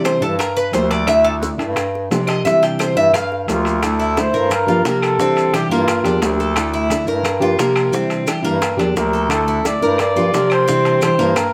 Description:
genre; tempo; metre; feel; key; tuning
latin, Cuban son and guajira; 175 BPM; 4/4; straight; unclear; A4 = 440 Hz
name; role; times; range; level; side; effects
nylon-string guitar; accompaniment; 0.0-11.4 s; C3 to G4; -23 LUFS; equal; none
Cuban tres; arpeggios; 0.0-11.5 s; Bb3 to F5; -22 LUFS; equal; none
clear bass clarinet; bass; 0.0-11.5 s; D2 to C3; -23 LUFS; equal; none
claves; percussion; 0.0-11.5 s; none; -33 LUFS; equal; none
maracas; percussion; 0.0-11.5 s; none; -36 LUFS; equal; none
bongos; percussion; 0.1-11.5 s; none; -29 LUFS; equal; none
timbales; percussion; 0.1-11.5 s; none; -28 LUFS; equal; none
trumpet with bucket mute; melody; 3.5-6.2, 9.0-11.5 s; F4 to D5; -22 LUFS; equal; none
room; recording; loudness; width
moderate studio reverb, RT60 0.7 s; none; -17 LUFS; mono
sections
0.0-3.8 A section; 3.8-11.5 B section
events
Cuban tres solo 0.0-3.8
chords
0.4 Gm7; 1.1 Dsus2; 1.8 Gm7; 2.5 Cadd9; 3.1 Gm7; 3.8 Dsus2; 4.5 Gm7; 5.2 Cadd9; 5.9 Gm7; 6.6 Dsus2; 7.3 Gm7; 7.9 Cadd9; 8.6 Gm7; 9.3 Dsus2; 10.0 Gm7; 10.7 Cadd9

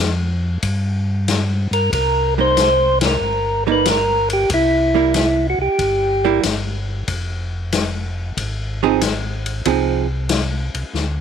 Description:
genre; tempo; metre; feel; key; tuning
soul jazz organ trio; 93 BPM; 4/4; swing 69% on 8ths; F minor; A4 = 439 Hz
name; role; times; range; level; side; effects
mellow tonewheel organ; bass; 0.0-11.2 s; F1 to G2; -22 LUFS; equal; slow rotary speaker
swinging big-band drum kit; drums; 0.6-11.1 s; hi-hat, kick drum, ride cymbal, snare drum; -23 LUFS; left 5 dB; none
percussive tonewheel organ; melody; 1.7-6.4 s; E4 to C5; -16 LUFS; equal; slow rotary speaker
archtop guitar, miked and amplified; accompaniment; 2.4-10.1 s; F3 to Ab4; -19 LUFS; right 13 dB; none
room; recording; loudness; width
studio ambience; 1960s-style stereo; -16 LUFS; side -7 dB against mid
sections
0.0-11.2 A section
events
band accent 2.9-3.2; drum fill 10.9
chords
0.0 N.C.; 0.6 Gm; 1.9 Cm7; 4.5 C7; 7.1 Fm7

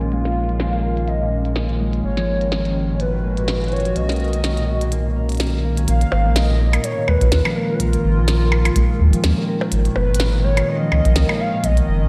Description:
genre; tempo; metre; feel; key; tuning
IDM; 125 BPM; 4/4; swing 56% on 16ths; Bb phrygian; A4 = 440 Hz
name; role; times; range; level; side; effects
hollow soft pad; sustained chords; 0.0-12.1 s; Eb3 to Gb4; -28 LUFS; equal; chorus, vintage 12-bit sampler grit
concert harp; arpeggios; 0.0-12.1 s; Bb2 to Bb4; -27 LUFS; equal; diffuse ambient delay
warm sub bass; bass; 0.0-12.1 s; Gb1 to Eb2; -22 LUFS; equal; none
glitchy drum kit; drums; 0.0-11.9 s; hi-hat, percussion blips, snare drum; -28 LUFS; equal; studio reverb, diffuse ambient delay
warbly nostalgic lead; melody; 0.1-12.1 s; Bb4 to F5; -28 LUFS; equal; lush chorus, vintage 12-bit sampler grit, delay
electronic kick drum; drums; 7.2-11.7 s; none; -20 LUFS; equal; studio reverb
room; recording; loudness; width
moderate lush hall reverb, RT60 2.0 s; dreamy mix soaked in reverb, low-pass filter; -19 LUFS; mono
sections
0.0-5.9 A section; 5.9-12.1 B section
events
filter sweep on harp 0.0-5.9; filter sweep 0.0-5.9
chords
0.0 Bbm7; 2.0 Abm7; 4.0 B; 5.9 Bbm7; 9.7 Abm7

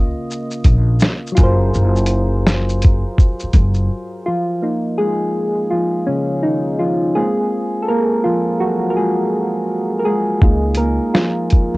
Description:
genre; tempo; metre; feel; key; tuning
lo-fi hip hop; 83 BPM; 4/4; swing 64% on 16ths; Db major; A4 = 440 Hz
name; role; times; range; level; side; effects
soft electric-piano-like synth keys; accompaniment; 0.0-11.8 s; Db3 to Eb5; -18 LUFS; equal; chorus, low-pass filter
upright bass; bass; 0.0-3.9, 10.4-11.8 s; Gb1 to Db2; -16 LUFS; equal; none
lo-fi sampler-style drum kit; drums; 0.3-3.9, 10.4-11.7 s; hi-hat, kick drum, shaker, snare drum; -13 LUFS; equal; cassette tape
room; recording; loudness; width
light reverb; home recording on cassette; -14 LUFS; side -22 dB against mid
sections
0.0-4.6 A section; 4.6-11.8 B section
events
break 3.9-4.6; synth keys solo 4.6-11.8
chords
0.0 Db69; 1.4 Gbmaj9#11; 4.6 Db69; 7.2 Gbmaj9#11; 10.4 Db69

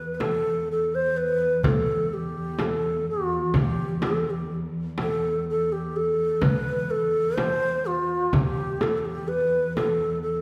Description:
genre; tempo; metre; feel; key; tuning
Arabic maqam ensemble; 126 BPM (eighths); 10/8; straight; E maqam bayati; A4 = 440 Hz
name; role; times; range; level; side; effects
breathy reedy low ney; melody; 0.0-10.4 s; F4+42c to C5; -27 LUFS; equal; none
dark cello; drone; 0.0-10.4 s; E2; -34 LUFS; equal; none
darbuka; percussion; 0.2-10.4 s; none; -30 LUFS; equal; none
frame drum; percussion; 0.2-10.0 s; none; -32 LUFS; equal; none
room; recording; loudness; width
wet recital hall reverb, RT60 1.4 s; heard from further back in the room; -25 LUFS; mono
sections
0.0-10.4 A section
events
none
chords
none

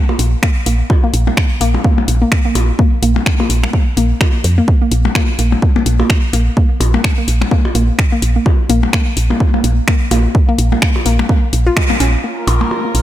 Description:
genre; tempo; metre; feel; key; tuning
minimal techno; 127 BPM; 4/4; swing 58% on 16ths; Bb minor; A4 = 440 Hz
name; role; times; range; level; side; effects
hollow square pluck; riff; 0.1-12.9 s; Ab3 to F4; -19 LUFS; left 1 dB; chorus, sidechain pumping, tape echo
percussion blips; percussion; 0.1-12.8 s; none; -22 LUFS; left 4 dB; diffuse ambient delay
woody FM bass; bass; 0.2-13.0 s; Bb1 to F2; -14 LUFS; equal; tube saturation, sidechain pumping
house drum kit; drums; 0.2-13.0 s; finger snaps, hi-hat; -20 LUFS; left 1 dB; overdrive
electronic kick drum; drums; 0.4-11.9 s; none; -13 LUFS; equal; overdrive
warm chamber string section; texture; 12.2-13.0 s; F4 to Db5; -21 LUFS; right 3 dB; sidechain pumping
room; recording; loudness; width
light reverb, digital ambience; none; -11 LUFS; side -13 dB against mid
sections
0.0-12.2 A section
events
filter sweep on synth arpeggio sound 0.0-12.2; band accent 11.8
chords
0.0 N.C.; 12.2 Bbm

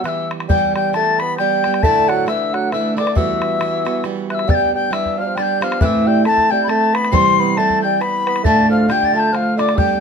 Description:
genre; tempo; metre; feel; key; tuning
celtic folk, Celtic waltz; 136 BPM; 3/4; swing 58% on 8ths; E minor, G mixolydian from 4.5 s; A4 = 440 Hz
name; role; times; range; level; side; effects
baroque flute; melody; 0.0-10.0 s; D5 to C6; -18 LUFS; left 5 dB; none
mellow bassoon; second line; 0.0-10.0 s; D3 to C4; -22 LUFS; right 5 dB; none
mellow hollow tin whistle; second line; 0.0-10.0 s; D6 to C7; -23 LUFS; left 4 dB; none
picked plugged-in old ladder-braced acoustic guitar; accompaniment; 0.0-10.0 s; D2 to G4; -20 LUFS; right 4 dB; none
bodhran; percussion; 0.1-9.9 s; none; -22 LUFS; left 1 dB; none
room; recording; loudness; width
moderate studio reverb, RT60 0.9 s; minimal, uncompressed stereo recording; -14 LUFS; side -6 dB against mid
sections
0.0-4.5 A section; 4.5-10.0 B section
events
none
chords
0.0 Em; 1.8 Dsus2; 3.2 Emadd9; 4.5 G; 5.8 Am; 7.1 C; 8.5 Dm

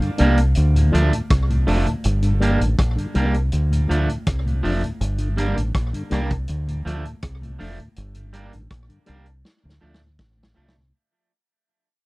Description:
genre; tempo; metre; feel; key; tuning
roots reggae; 81 BPM; 4/4; straight; G minor; A4 = 444 Hz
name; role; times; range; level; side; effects
mellow tonewheel organ; accompaniment; 0.0-10.9 s; D2 to D4; -26 LUFS; left 1 dB; chorus vibrato, slow rotary speaker, slapback echo
vintage drum kit; drums; 0.0-10.9 s; hi-hat, kick drum, rim click, snare drum; -25 LUFS; equal; none
electric guitar at the edge of break-up; accompaniment; 0.2-10.7 s; F3 to D4; -26 LUFS; right 2 dB; tape echo
deep dub fingered electric bass; bass; 0.2-10.9 s; F1 to D2; -20 LUFS; equal; none
room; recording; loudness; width
little or no reverb; dry, close 1970s-style studio recording; -18 LUFS; side -22 dB against mid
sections
0.0-10.9 A section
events
fade-out 0.0-10.9; drum fill 9.4-10.9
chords
0.0 Gm; 0.6 Dm; 2.0 Gm; 3.5 Dm; 5.0 Gm; 6.5 Dm; 8.0 Gm; 9.4 Dm

